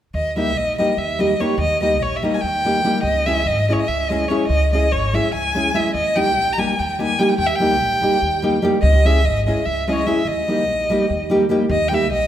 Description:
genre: balkan folk, Balkan wedding band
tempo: 290 BPM (eighths)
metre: 7/8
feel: straight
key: unclear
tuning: A4 = 440 Hz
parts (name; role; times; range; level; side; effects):
- rich violin; melody; 0.1-12.3 s; Db5 to Bb5; -20 LUFS; equal; none
- upright bass; bass; 0.1-12.3 s; Ab1 to Eb2; -22 LUFS; equal; none
- nylon-string guitar; accompaniment; 0.4-12.1 s; G3 to Ab4; -20 LUFS; equal; none
room: moderate concert hall reverb, RT60 2.0 s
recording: minimal, uncompressed stereo recording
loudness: -16 LUFS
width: side -11 dB against mid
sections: 0.1-11.7 A section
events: none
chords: 0.1 Eb; 3.0 Dbm; 5.9 Eb; 8.8 Dbm; 10.3 Eb

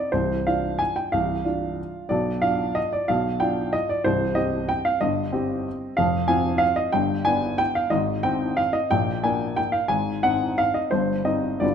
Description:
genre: classical, piano waltz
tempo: 184 BPM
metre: 3/4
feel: uneven beats, rubato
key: C minor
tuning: A4 = 440 Hz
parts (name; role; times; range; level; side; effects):
- warm upright piano; solo; 0.0-11.7 s; C1 to Ab5; -21 LUFS; equal; none
room: moderate recital hall reverb, RT60 1.6 s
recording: minimal, uncompressed stereo recording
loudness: -21 LUFS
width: side -8 dB against mid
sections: 0.0-11.7 A section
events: none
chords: 0.1 Csus24; 2.1 G7/B; 4.1 Cm; 6.0 Fm; 6.9 G; 7.9 Abmaj7; 8.9 Bb; 9.9 Ab7; 10.9 Cm/G

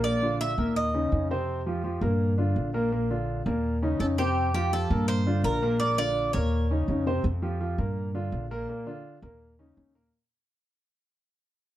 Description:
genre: latin, Cuban son and guajira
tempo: 167 BPM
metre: 4/4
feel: straight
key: unclear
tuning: A4 = 438 Hz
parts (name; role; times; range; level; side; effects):
- Cuban tres; melody; 0.0-1.3, 4.0-7.0 s; G4 to E5; -29 LUFS; right 2 dB; plate reverb
- warm concert grand piano; arpeggios; 0.0-10.1 s; Bb2 to C5; -28 LUFS; equal; none
- upright bass; bass; 0.0-10.1 s; Bb1 to G2; -28 LUFS; equal; none
room: light reverb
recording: dark, warm production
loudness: -24 LUFS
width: side -13 dB against mid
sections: 0.0-7.2 A section; 7.2-10.1 B section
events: fade-out 7.2-10.1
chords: 0.0 Bb; 0.8 Eb5; 1.5 Fsus2; 2.2 Gm7; 2.9 Bb; 3.6 Eb5; 4.4 Fadd9; 5.1 Gm7; 5.8 Bb; 6.5 Eb5; 7.2 Fsus2; 8.0 Gm7; 8.7 Bb; 9.4 Eb5

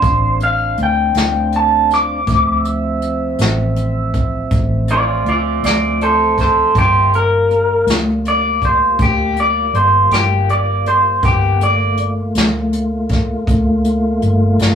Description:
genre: slow blues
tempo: 54 BPM (dotted quarters)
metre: 12/8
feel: straight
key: unclear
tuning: A4 = 438 Hz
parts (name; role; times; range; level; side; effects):
- electric guitar through a small old amp; melody; 0.0-12.0 s; F4 to D6; -14 LUFS; equal; slapback echo
- tonewheel organ; sustained chords; 0.0-14.8 s; F3 to F#5; -22 LUFS; equal; slow rotary speaker
- vintage muted fingered electric bass; bass; 0.0-14.8 s; G1 to D2; -18 LUFS; equal; none
- jazz brush drum kit; drums; 0.0-14.8 s; hi-hat, kick drum, snare drum; -19 LUFS; equal; none
room: moderate booth ambience, RT60 0.3 s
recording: rough rehearsal-room recording, warm saturation, small room ambience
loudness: -13 LUFS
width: side -8 dB against mid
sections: 0.0-14.8 A section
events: none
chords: 0.0 Dm7; 6.7 Gm7

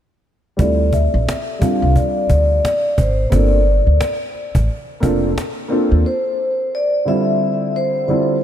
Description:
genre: hip hop, jazz-hop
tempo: 88 BPM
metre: 4/4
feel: swing 59% on 16ths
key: D minor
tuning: A4 = 440 Hz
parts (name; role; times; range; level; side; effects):
- vibraphone with soft mallets; melody; 0.6-8.4 s; C5 to F5; -19 LUFS; left 1 dB; low-pass filter, diffuse ambient delay
- dark baby grand piano; accompaniment; 0.6-8.4 s; D3 to A4; -20 LUFS; right 1 dB; lush chorus, low-pass filter
- upright bass; bass; 0.6-6.0 s; F1 to Eb2; -16 LUFS; equal; none
- cajon; drums; 0.6-5.6 s; none; -22 LUFS; equal; none
room: moderate lush hall reverb, RT60 2.8 s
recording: dreamy mix soaked in reverb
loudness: -15 LUFS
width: side -10 dB against mid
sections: 0.6-6.0 A section; 6.0-8.4 B section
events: filter sweep 0.6-6.0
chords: 0.6 Dm11; 3.3 Gm11; 6.0 Dm11

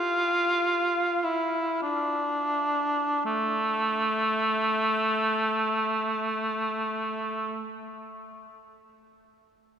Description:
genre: classical, free, expressive piece for unaccompanied cor anglais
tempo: 36-59 BPM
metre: 3/4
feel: rubato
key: unclear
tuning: A4 = 440 Hz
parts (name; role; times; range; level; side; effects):
- warm cor anglais; solo; 0.0-7.7 s; A3 to F4; -25 LUFS; equal; none
room: wet cathedral reverb, RT60 5.0 s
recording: heard from further back in the room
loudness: -24 LUFS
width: side -8 dB against mid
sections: 0.0-3.2 A section; 3.2-7.0 B section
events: slowing down 0.0-3.2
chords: none

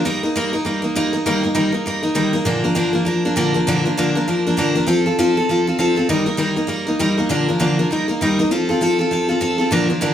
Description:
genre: rock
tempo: 198 BPM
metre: 4/4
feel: swing 60% on 8ths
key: Bb major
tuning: A4 = 439 Hz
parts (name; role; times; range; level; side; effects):
- picked steel-string acoustic guitar; solo; 0.0-10.1 s; Bb2 to Bb4; -16 LUFS; equal; none
room: wet large studio reverb, RT60 0.9 s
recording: band playing live in one room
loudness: -16 LUFS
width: side -10 dB against mid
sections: 0.0-9.7 A section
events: none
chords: 0.1 Eb; 2.5 Bb; 4.9 F; 6.1 Eb; 7.3 Bb; 7.9 Eb; 8.5 F

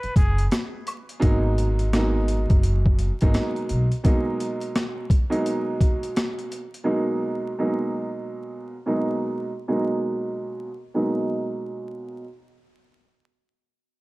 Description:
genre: hip hop, boom-bap hip-hop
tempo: 85 BPM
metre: 4/4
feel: swing 62% on 16ths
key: G# minor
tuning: A4 = 441 Hz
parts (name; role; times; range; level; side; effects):
- trumpet with straight mute; melody; 0.0-0.5 s; G#4 to B4; -33 LUFS; equal; high-pass filter, low-pass filter, tape echo
- upright bass; bass; 0.0-3.9 s; F#1 to B1; -22 LUFS; equal; none
- boom bap sampler-style drum kit; drums; 0.0-6.9 s; hi-hat, kick drum, rim click, snare drum; -22 LUFS; equal; overdrive
- tube shaker and woodblock; percussion; 0.2-1.1 s; none; -36 LUFS; left 1 dB; none
- clear upright piano; accompaniment; 1.2-12.2 s; B2 to D#4; -25 LUFS; right 1 dB; cassette tape, high-pass filter, low-pass filter
room: studio reverb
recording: dark, warm production, vinyl crackle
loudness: -21 LUFS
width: side -21 dB against mid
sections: 0.0-1.2 A section; 1.2-12.5 B section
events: break 0.0-1.2; filter sweep on upright piano 1.2-12.5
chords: 0.0 G#7(no3); 1.2 G#m7

